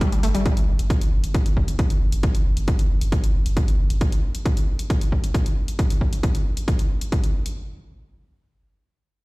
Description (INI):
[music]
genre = driving peak-time techno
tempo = 135 BPM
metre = 4/4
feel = straight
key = unclear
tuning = A4 = 439 Hz
[part]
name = electronic hi-hat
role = drums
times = 0.0-7.5 s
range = none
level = -37 LUFS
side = left 2 dB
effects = overdrive
[part]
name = electronic kick drum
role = drums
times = 0.0-7.2 s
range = none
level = -20 LUFS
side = equal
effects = overdrive
[part]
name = saturated sub bass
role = bass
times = 0.1-4.0 s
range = G1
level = -23 LUFS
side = equal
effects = overdrive, sidechain pumping, low-pass filter
[sound]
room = little or no reverb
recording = played on a big sound system in a bare room, large studio reverb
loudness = -19 LUFS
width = side -23 dB against mid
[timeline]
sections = 0.0-7.6 A section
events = none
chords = none